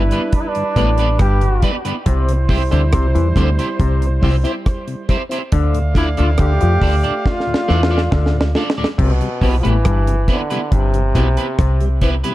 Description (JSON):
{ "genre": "roots reggae", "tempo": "69 BPM", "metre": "4/4", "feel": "straight", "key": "C major", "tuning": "A4 = 442 Hz", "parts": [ { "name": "brilliant trombone", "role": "melody", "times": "0.0-12.0 s", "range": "B2 to G4", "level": "-22 LUFS", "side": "equal", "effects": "tape echo" }, { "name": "warm horn section", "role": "second line", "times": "0.0-8.5 s", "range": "G3 to F5", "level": "-26 LUFS", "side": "right 3 dB", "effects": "tape echo" }, { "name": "overdriven clav", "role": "riff", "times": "0.0-11.8 s", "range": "G2 to F3", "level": "-24 LUFS", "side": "left 4 dB", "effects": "phaser" }, { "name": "deep dub fingered electric bass", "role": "bass", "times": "0.0-12.2 s", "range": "G1 to F2", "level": "-16 LUFS", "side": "equal", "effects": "none" }, { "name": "electric guitar at the edge of break-up", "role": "accompaniment", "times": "0.1-12.3 s", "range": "B3 to D5", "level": "-26 LUFS", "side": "right 3 dB", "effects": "wide subtle chorus, tape echo" }, { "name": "mellow tonewheel organ", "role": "accompaniment", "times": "0.1-12.3 s", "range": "D2 to F4", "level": "-26 LUFS", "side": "left 2 dB", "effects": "slow rotary speaker" }, { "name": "deep reggae drum kit", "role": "drums", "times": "0.1-12.3 s", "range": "crash cymbal, hi-hat, kick drum, rim click, snare drum", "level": "-18 LUFS", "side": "equal", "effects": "none" } ], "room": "small room ambience", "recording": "dark, warm production", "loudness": "-14 LUFS", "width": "side -16 dB against mid", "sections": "0.0-9.0 A section; 9.0-12.3 B section", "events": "drum fill 7.3-9.0", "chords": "0.0 G; 2.1 C; 5.5 Dm; 9.0 Cmaj7" }